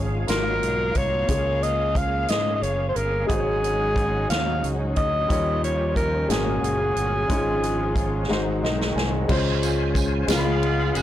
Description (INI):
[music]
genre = slow gospel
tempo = 60 BPM (dotted quarters)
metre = 6/8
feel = straight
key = Db major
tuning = A4 = 440 Hz
[part]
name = warm baby grand piano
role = accompaniment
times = 0.0-11.0 s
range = Ab2 to C6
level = -27 LUFS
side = left 3 dB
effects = none
[part]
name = bright tonewheel organ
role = sustained chords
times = 0.0-11.0 s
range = Eb3 to Cb6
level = -33 LUFS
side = right 3 dB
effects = fast rotary speaker, overdrive, chorus vibrato
[part]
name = dark studio string section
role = sustained chords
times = 0.0-9.3 s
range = F3 to F5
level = -33 LUFS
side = left 1 dB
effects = none
[part]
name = fingered electric bass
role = bass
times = 0.0-11.0 s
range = F1 to Ab2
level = -27 LUFS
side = equal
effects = transformer saturation
[part]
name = breathy alto saxophone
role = melody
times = 0.3-8.6 s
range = Ab4 to F5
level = -24 LUFS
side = equal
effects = none
[part]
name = swinging big-band drum kit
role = drums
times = 0.3-11.0 s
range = crash cymbal, hi-hat, kick drum, ride cymbal, snare drum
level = -28 LUFS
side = right 1 dB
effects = none
[part]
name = tambourine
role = percussion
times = 9.6-11.0 s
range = none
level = -33 LUFS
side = right 8 dB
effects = none
[part]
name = clear saxophone section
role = melody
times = 10.3-11.0 s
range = Ab3 to Gb4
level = -25 LUFS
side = right 1 dB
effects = none
[sound]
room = little or no reverb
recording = blown-out, overdriven recording, overdrive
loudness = -20 LUFS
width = side -12 dB against mid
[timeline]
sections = 0.0-9.3 A section; 9.3-11.0 B section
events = drum fill 8.3-9.3; grand piano fill 8.3-9.3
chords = 0.3 Ab13; 1.3 Db6; 3.3 Ab7sus4; 5.3 Eb9; 6.3 Ab9sus4; 7.3 Db/Ab; 8.3 Ab7; 9.3 Dbmaj7; 10.3 Db7